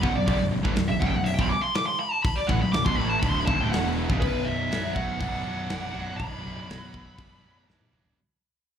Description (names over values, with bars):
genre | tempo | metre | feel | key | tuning
heavy metal | 122 BPM | 4/4 | straight | B minor | A4 = 439 Hz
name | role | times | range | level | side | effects
high-gain lead guitar | melody | 0.0-7.6 s | B4 to D6 | -28 LUFS | equal | distortion, slapback echo
biting overdriven guitar | riff | 0.0-4.2 s | B1 to A3 | -31 LUFS | right 1 dB | slapback echo
high-gain distorted guitar | riff | 0.0-8.2 s | B1 to D4 | -31 LUFS | right 7 dB | distortion, slapback echo
scooped high-gain guitar | riff | 0.0-8.2 s | B1 to D4 | -33 LUFS | left 8 dB | distortion
fuzz picked electric bass | bass | 0.0-8.1 s | B0 to A1 | -31 LUFS | equal | overdrive
tight metal drum kit | drums | 0.0-8.2 s | hi-hat, kick drum, snare drum, toms | -29 LUFS | equal | none
room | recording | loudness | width
light reverb | live gig heard through the venue's PA, club reverb | -23 LUFS | side -8 dB against mid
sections
0.0-4.2 A section; 4.2-8.2 B section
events
lead electric guitar solo 0.0-4.2; fade-out 4.2-8.2; drum fill 7.7-8.2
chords
0.0 Bm